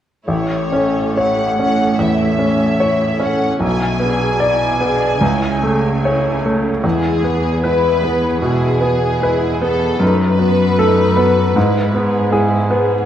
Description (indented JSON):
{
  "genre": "classical",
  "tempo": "74 BPM",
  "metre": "4/4",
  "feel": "uneven beats, rubato",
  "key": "A major",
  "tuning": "A4 = 440 Hz",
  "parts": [
    { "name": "clear baby grand piano", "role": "melody", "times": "0.3-13.1 s", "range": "A1 to D5", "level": "-16 LUFS", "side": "left 1 dB", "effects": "none" },
    { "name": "warm symphonic violin section", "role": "melody", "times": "0.3-12.7 s", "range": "G#4 to G#5", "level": "-20 LUFS", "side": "left 2 dB", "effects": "none" },
    { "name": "warm symphonic viola section", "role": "accompaniment", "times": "0.3-13.1 s", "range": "G#3 to A4", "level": "-23 LUFS", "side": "right 1 dB", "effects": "none" },
    { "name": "warm studio cello section", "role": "bass", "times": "0.3-13.1 s", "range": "E2 to C#3", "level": "-22 LUFS", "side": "right 2 dB", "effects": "none" }
  ],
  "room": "moderate scoring stage reverb, RT60 1.9 s",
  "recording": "worn, warbling old tape, cassette tape, warbly pitch drift",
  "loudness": "-13 LUFS",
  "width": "side -10 dB against mid",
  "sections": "0.3-13.1 A section",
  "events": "none",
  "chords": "0.3 A; 3.6 E7/B; 5.2 A/C#; 6.8 E; 10.0 B7/F#; 11.6 E/G#"
}